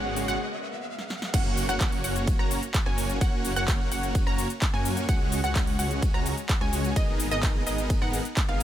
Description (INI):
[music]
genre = EDM, festival progressive house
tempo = 128 BPM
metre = 4/4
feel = straight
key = F# major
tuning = A4 = 440 Hz
[part]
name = lush unison pad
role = sustained chords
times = 0.0-1.3 s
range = G#3 to B3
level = -41 LUFS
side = equal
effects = chorus, sidechain pumping
[part]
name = wide unison pluck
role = arpeggios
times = 0.0-8.6 s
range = D#5 to A#5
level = -34 LUFS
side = right 1 dB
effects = sidechain pumping, ping-pong delay
[part]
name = dense compressed supersaw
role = riff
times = 0.0-8.6 s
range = G#3 to A#5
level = -30 LUFS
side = equal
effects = sidechain pumping, ping-pong delay
[part]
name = detuned saw bass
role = bass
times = 0.0-8.6 s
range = F#1 to F#2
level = -32 LUFS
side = equal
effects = sidechain pumping
[part]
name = riser and impact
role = sound effects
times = 0.0-3.2 s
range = none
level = -39 LUFS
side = equal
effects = none
[part]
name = big-room dance drum kit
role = drums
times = 0.2-8.6 s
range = crash cymbal, handclaps, hi-hat, ride cymbal, rim click, shaker, snare drum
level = -33 LUFS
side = equal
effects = none
[part]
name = electronic kick drum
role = drums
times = 1.3-8.5 s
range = none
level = -25 LUFS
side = equal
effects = none
[sound]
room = light reverb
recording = none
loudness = -24 LUFS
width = side -12 dB against mid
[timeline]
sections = 0.0-1.3 A section; 1.3-8.6 B section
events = build-up 0.0-1.3; riser 0.0-1.3; filter sweep on synth pluck 0.0-1.3; break 0.4-1.3; drum fill 1.0-1.3; drop 1.3-8.6; impact 1.3-3.2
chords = 0.0 G#madd9; 1.3 F#; 5.1 C#sus4; 7.0 G#madd9